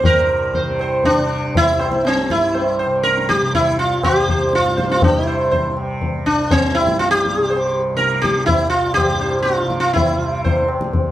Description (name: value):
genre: indian classical, Hindustani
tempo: 121 BPM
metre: 5/4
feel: straight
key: C raga khamaj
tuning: A4 = 440 Hz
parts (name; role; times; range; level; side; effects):
- sitar; melody; 0.0-10.7 s; C4 to C5; -16 LUFS; equal; none
- tanpura; drone; 0.0-11.1 s; C2 to C3; -25 LUFS; equal; none
- tabla; percussion; 0.0-11.1 s; none; -21 LUFS; left 2 dB; none
room: light reverb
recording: close, detailed microphones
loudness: -15 LUFS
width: side -13 dB against mid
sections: 0.0-11.1 A section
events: none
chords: none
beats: | 0.04 0.54 1.04 1.54 2.04 | 2.53 3.03 3.53 4.03 4.52 | 5.02 5.51 6.01 6.50 7.00 | 7.49 7.99 8.48 8.97 9.46 | 9.95 10.44 10.93